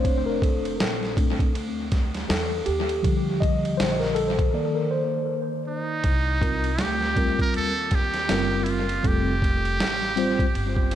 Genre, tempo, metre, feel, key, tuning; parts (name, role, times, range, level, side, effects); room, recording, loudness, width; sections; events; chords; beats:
hip hop, jazz-hop; 80 BPM; 4/4; swing 58% on 16ths; C dorian; A4 = 440 Hz
mellow tine electric piano; accompaniment; 0.0-10.5 s; D3 to Eb5; -26 LUFS; left 1 dB; medium stereo tremolo, analog delay
upright bass; bass; 0.0-11.0 s; F1 to E2; -30 LUFS; equal
boom bap sampler-style drum kit; drums; 0.0-11.0 s; hi-hat, kick drum, ride cymbal, snare drum; -25 LUFS; equal; analog delay
trumpet with metal mute; melody; 5.7-11.0 s; Eb4 to Bb4; -26 LUFS; right 2 dB; analog delay
light reverb; echo-heavy mix; -21 LUFS; side -11 dB against mid
0.0-6.0 A section; 6.0-11.0 B section
tine electric piano solo 0.0-6.0; break 4.5-6.0
0.0 Bbmaj9/F; 2.7 Ebmaj9; 4.5 Cm9; 9.0 Fadd9
| 0.05 0.80 1.55 2.30 | 3.05 3.80 4.55 5.30 | 6.05 6.80 7.55 8.30 | 9.05 9.80 10.55